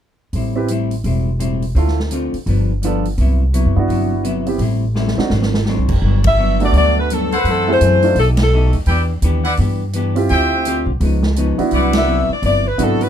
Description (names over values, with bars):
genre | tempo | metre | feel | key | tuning
jazz, big band swing | 169 BPM | 4/4 | swing 62% on 8ths | G major | A4 = 441 Hz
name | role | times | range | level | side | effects
hollow-body jazz guitar | accompaniment | 0.3-13.0 s | F#2 to G4 | -22 LUFS | left 3 dB | none
upright bass | bass | 0.3-13.1 s | E1 to G2 | -17 LUFS | equal | none
swinging big-band drum kit | drums | 0.3-13.1 s | crash cymbal, hi-hat, kick drum, ride cymbal, snare drum | -25 LUFS | right 1 dB | none
warm grand piano | accompaniment | 0.6-13.1 s | A3 to B4 | -20 LUFS | right 4 dB | none
warm saxophone section | melody | 6.3-8.7, 12.0-13.1 s | A4 to E5 | -17 LUFS | left 2 dB | none
brilliant trumpet section | stabs | 7.3-12.3 s | E4 to G5 | -19 LUFS | equal | none
room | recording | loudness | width
light reverb | close, detailed microphones | -14 LUFS | side -9 dB against mid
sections
0.3-6.0 A section; 6.0-13.1 B section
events
drum fill 5.0-5.7; band accent 6.2, 8.3, 11.9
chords
0.3 Am7; 1.8 Dm7; 2.5 G7; 3.2 Cmaj9#11; 4.6 Am7; 5.3 Ab7#11; 6.0 Gmaj7; 7.5 F#m7b5; 8.2 Baug7; 8.9 Em7; 10.3 Dm11; 11.0 C#9; 11.7 Cmaj9#11